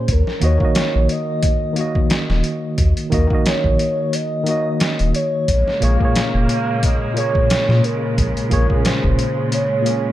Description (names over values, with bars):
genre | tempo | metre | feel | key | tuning
trip hop | 89 BPM | 4/4 | swing 55% on 16ths | Bb minor | A4 = 440 Hz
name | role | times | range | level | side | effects
pure breathy sine lead | melody | 0.0-10.1 s | Bb4 to F5 | -23 LUFS | right 1 dB | wide subtle chorus, tape echo
barky tine electric piano | accompaniment | 0.0-10.1 s | Bb2 to Eb5 | -21 LUFS | equal | medium stereo tremolo, harmonic tremolo
warm sub bass | bass | 0.1-9.2 s | Eb1 to Bb2 | -17 LUFS | equal | none
trip hop sampler-style drum kit | drums | 0.1-10.0 s | hi-hat, kick drum, snare drum | -19 LUFS | equal | none
rich studio string section | sustained chords | 5.5-10.1 s | Db3 to Bb3 | -25 LUFS | right 1 dB | vintage 12-bit sampler grit
room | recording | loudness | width
little or no reverb | dark, warm production | -15 LUFS | side -14 dB against mid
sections
0.0-10.1 A section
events
none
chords
0.1 Ebm; 5.5 Bbm7